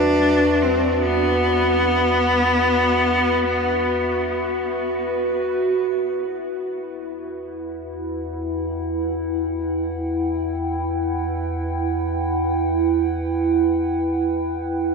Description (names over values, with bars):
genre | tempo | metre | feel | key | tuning
ambient | free time | none | none | E minor | A4 = 440 Hz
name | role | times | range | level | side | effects
clear cello | melody | 0.0-5.1 s | B3 to D4 | -20 LUFS | equal | diffuse ambient delay
warbly tape-like pad | sustained chords | 0.0-14.9 s | E4 to G5 | -21 LUFS | right 1 dB | chorus, built-in reverb, phaser
deep rumbling drone | bass | 0.0-14.9 s | E2 | -29 LUFS | equal | built-in reverb
drifting glass-harmonics texture | texture | 0.0-5.9 s | F#5 | -40 LUFS | right 1 dB | none
room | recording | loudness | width
wet huge ambient reverb, RT60 9.0 s | none | -19 LUFS | side -4 dB against mid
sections
0.0-5.9 A section; 5.9-14.9 B section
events
filter sweep on ambient pad 5.9-14.9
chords
0.0 Bsus4/E; 5.9 Em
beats
free time